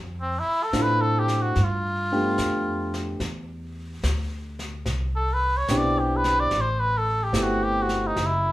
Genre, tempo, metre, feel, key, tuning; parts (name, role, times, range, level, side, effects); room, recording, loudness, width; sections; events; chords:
jazz; 73 BPM; 4/4; swing 67% on 8ths; A4 = 440 Hz
upright bass; bass; 0.0-8.5 s; F#1 to A2; -27 LUFS; equal
trumpet with cup mute; melody; 0.2-8.5 s; C4 to D5; -24 LUFS; equal
warm grand piano; accompaniment; 0.7-8.2 s; A3 to G4; -26 LUFS; equal
jazz brush drum kit; drums; 0.7-8.5 s; brushed snare drum, hi-hat, snare drum; -34 LUFS; left 1 dB
moderate large studio reverb, RT60 0.8 s; band playing live in one room; -22 LUFS; side -16 dB against mid
0.0-8.5 A section
muted trumpet solo 0.0-8.5
0.0 Dm7; 1.6 G9; 3.2 Cmaj9; 6.5 Am9